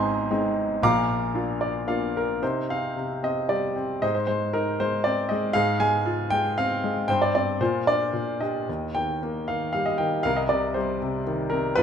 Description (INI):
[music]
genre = classical, lyrical solo piano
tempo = 107-122 BPM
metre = 3/4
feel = rubato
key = C minor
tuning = A4 = 443 Hz
[part]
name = clear grand piano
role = solo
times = 0.0-11.8 s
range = Ab1 to D6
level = -22 LUFS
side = equal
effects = none
[sound]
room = moderate recital hall reverb, RT60 1.4 s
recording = minimal, uncompressed stereo recording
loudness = -23 LUFS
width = side -8 dB against mid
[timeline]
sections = 0.0-2.4 A section; 2.4-11.8 B section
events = grand piano fill 1.3-2.4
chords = 0.0 Ab; 0.8 Bb; 2.4 Cmadd9; 4.0 Ab; 5.5 Fm/Ab; 7.1 Gsus4; 7.6 Bb; 8.7 Eb; 10.3 Cm7